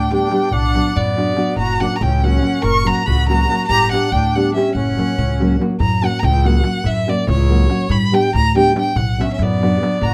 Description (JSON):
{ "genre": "balkan folk, Balkan wedding band", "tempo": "284 BPM (eighths)", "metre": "5/8", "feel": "straight", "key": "F# phrygian dominant", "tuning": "A4 = 438 Hz", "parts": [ { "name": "rich violin", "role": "melody", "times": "0.0-10.1 s", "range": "C#5 to C#6", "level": "-23 LUFS", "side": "equal", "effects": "none" }, { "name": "accordion", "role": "second line", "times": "0.0-5.6, 9.2-10.1 s", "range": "B3 to A#4", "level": "-26 LUFS", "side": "equal", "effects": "light tremolo tuning" }, { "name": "upright bass", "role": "bass", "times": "0.0-10.1 s", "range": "F#1 to G2", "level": "-21 LUFS", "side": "equal", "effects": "none" }, { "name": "darbuka", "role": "percussion", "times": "0.0-10.1 s", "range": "none", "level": "-25 LUFS", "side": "equal", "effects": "none" }, { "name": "nylon-string guitar", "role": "accompaniment", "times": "0.1-10.0 s", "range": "F#3 to G4", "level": "-21 LUFS", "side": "equal", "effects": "none" } ], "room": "light reverb", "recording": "none", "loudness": "-16 LUFS", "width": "mono", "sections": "0.0-5.8 A section; 5.8-10.1 A section", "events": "none", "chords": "0.0 G; 0.5 Bm; 1.6 F#; 3.7 G; 4.7 F#; 7.9 G; 9.0 Bm" }